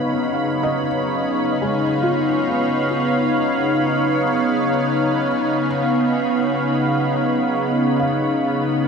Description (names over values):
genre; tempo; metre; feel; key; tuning
ambient; free time; none; none; unclear; A4 = 440 Hz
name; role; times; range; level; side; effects
warm analog pad; sustained chords; 0.0-8.9 s; C#3 to E#5; -18 LUFS; equal; chorus
felt-muted upright piano; arpeggios; 0.0-8.9 s; G#3 to E#5; -27 LUFS; left 1 dB; ping-pong delay
organ-like drone; drone; 0.0-8.9 s; F#3 to B3; -29 LUFS; left 4 dB; ensemble chorus, built-in reverb
muted studio violin section; texture; 0.0-8.9 s; B5; -32 LUFS; right 1 dB; none
room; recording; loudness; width
wet huge ambient reverb, RT60 8.3 s; in a vast, echoing space, cassette tape; -17 LUFS; side -6 dB against mid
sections
0.0-8.9 A section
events
none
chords
0.0 C#7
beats
free time